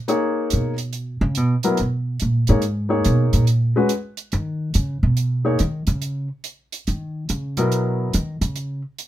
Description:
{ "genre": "modal jazz", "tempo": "142 BPM", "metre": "4/4", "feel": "swing 66% on 8ths", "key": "G# minor", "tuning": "A4 = 440 Hz", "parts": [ { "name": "warm grand piano", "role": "accompaniment", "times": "0.1-8.1 s", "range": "F#3 to C#5", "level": "-21 LUFS", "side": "left 2 dB", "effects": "none" }, { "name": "hi-hat", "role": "drums", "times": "0.1-9.1 s", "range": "none", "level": "-30 LUFS", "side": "right 7 dB", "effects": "none" }, { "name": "upright bass", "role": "bass", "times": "0.5-8.8 s", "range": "G#2 to D#3", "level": "-20 LUFS", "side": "right 1 dB", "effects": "none" } ], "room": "light reverb", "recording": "minimal, uncompressed stereo recording", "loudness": "-19 LUFS", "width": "side -13 dB against mid", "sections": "0.0-9.1 A section", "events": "upright bass solo 0.0-9.1", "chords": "0.0 G#madd9; 5.2 C#m9" }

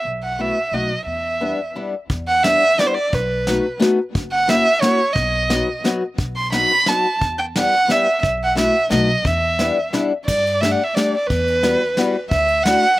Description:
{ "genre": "musette waltz", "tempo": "176 BPM", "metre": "3/4", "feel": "straight", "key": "E minor", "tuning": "A4 = 440 Hz", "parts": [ { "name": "dark violin", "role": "melody", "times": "0.0-13.0 s", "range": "B4 to C6", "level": "-17 LUFS", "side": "right 2 dB", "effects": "none" }, { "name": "upright bass", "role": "bass", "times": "0.0-12.8 s", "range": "F#1 to G2", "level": "-26 LUFS", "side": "equal", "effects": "none" }, { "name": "picked old ladder-braced acoustic guitar", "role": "accompaniment", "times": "0.4-12.8 s", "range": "F#3 to G4", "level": "-20 LUFS", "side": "left 3 dB", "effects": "slapback echo" }, { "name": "soft brush drum kit", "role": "drums", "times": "2.1-12.7 s", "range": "crash cymbal, hi-hat, kick drum, ride cymbal, snare drum", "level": "-23 LUFS", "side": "equal", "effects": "none" } ], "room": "little or no reverb", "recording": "recorded outdoors, with no room sound", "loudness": "-16 LUFS", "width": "side -17 dB against mid", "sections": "0.0-2.1 A section; 2.1-10.3 A section; 10.3-13.0 B section", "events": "none", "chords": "0.0 B7sus4; 0.7 B7; 1.1 Em7; 3.1 B7; 4.1 F#7; 5.2 B; 7.2 Em; 8.2 B7sus4; 8.9 B7; 9.2 Em7; 10.3 Gsus2; 11.3 Emadd9; 12.3 Dadd9" }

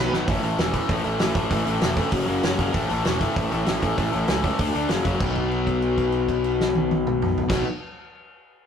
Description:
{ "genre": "punk rock", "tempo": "194 BPM", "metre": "4/4", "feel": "straight", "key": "B mixolydian", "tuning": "A4 = 443 Hz", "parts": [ { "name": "crunchy overdriven guitar", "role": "riff", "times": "0.0-7.7 s", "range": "F#2 to D4", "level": "-25 LUFS", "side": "left 6 dB", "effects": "none" }, { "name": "raw garage guitar", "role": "riff", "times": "0.0-7.6 s", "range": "A2 to C#5", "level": "-28 LUFS", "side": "right 3 dB", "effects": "overdrive" }, { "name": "fuzz picked electric bass", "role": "bass", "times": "0.0-7.6 s", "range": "E1 to D2", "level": "-28 LUFS", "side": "right 1 dB", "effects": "overdrive" }, { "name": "loose indie drum kit", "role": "drums", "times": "0.1-7.6 s", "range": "crash cymbal, hi-hat, kick drum, snare drum, toms", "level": "-26 LUFS", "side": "right 1 dB", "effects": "none" } ], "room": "light reverb", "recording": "rough rehearsal-room recording", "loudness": "-20 LUFS", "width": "side -8 dB against mid", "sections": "0.3-5.2 A section; 5.2-7.7 B section", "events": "drum fill 0.1; held note 5.2-7.5", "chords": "0.3 A; 2.1 F#5; 2.7 A; 4.6 D5; 4.9 F#5; 5.2 B" }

